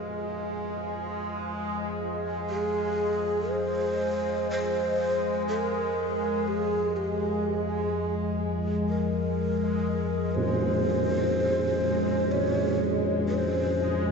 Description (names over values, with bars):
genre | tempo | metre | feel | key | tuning
dark ambient drone | 61 BPM | 4/4 | straight | F harmonic minor | A4 = 440 Hz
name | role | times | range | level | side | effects
breathy mellow long shakuhachi | melody | 0.0-14.1 s | G4 to Db5 | -29 LUFS | right 1 dB | tape echo
deep dark ambient pad | sustained chords | 0.0-14.1 s | Ab3 to F5 | -32 LUFS | left 2 dB | chorus, built-in reverb
deep rumbling drone | drone | 0.0-14.1 s | F2 to F3 | -33 LUFS | left 1 dB | built-in reverb, phaser
bubbling stepped-filter texture | texture | 0.0-14.1 s | Ab3 | -32 LUFS | equal | chorus, built-in reverb
tam-tam | percussion | 10.4-12.5 s | none | -32 LUFS | right 2 dB | low-pass filter on cymbals
room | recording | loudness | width
wet cathedral reverb, RT60 5.8 s | nothing above 7.8 kHz | -25 LUFS | side -5 dB against mid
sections
0.0-14.1 A section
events
fade-in on synth drone 0.0-14.1; fade-in on ambient pad 0.0-14.1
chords
0.0 Fm; 10.4 Dbm